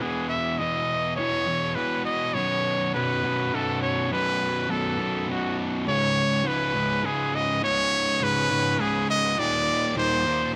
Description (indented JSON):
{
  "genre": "rock",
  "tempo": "102 BPM",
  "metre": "3/4",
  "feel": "straight",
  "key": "B major",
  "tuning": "A4 = 440 Hz",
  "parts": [
    { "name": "brilliant trumpet", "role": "melody", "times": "0.0-10.5 s", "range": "F#4 to E5", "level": "-27 LUFS", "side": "equal", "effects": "tape echo" },
    { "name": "fuzz guitar", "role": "riff", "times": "0.0-10.5 s", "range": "B1 to E3", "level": "-29 LUFS", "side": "equal", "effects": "distortion" }
  ],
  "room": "moderate huge ambient reverb, RT60 6.6 s",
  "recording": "none",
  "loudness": "-25 LUFS",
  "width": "mono",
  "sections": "0.0-10.6 A section",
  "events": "build-up 0.0-10.6",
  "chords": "0.0 E5; 2.4 B5; 5.9 C#5; 9.4 D#5"
}